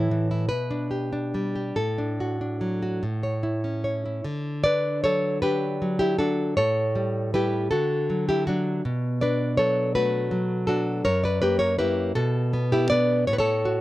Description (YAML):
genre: romantic piece for solo classical guitar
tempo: 46-55 BPM (dotted quarters)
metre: 6/8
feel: rubato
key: D major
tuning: A4 = 439 Hz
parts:
  - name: nylon-string guitar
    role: solo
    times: 0.0-13.8 s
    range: F#2 to D5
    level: -22 LUFS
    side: equal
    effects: none
room: light reverb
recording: close, detailed microphones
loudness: -22 LUFS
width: side -16 dB against mid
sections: 0.0-4.2 A section; 4.2-13.8 B section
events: none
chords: 0.0 A; 0.5 G/B; 1.8 D/A; 3.0 A; 4.2 D; 6.6 A7; 7.7 D; 8.8 Bm7; 11.0 F#7; 12.1 Bm; 13.3 F#m/A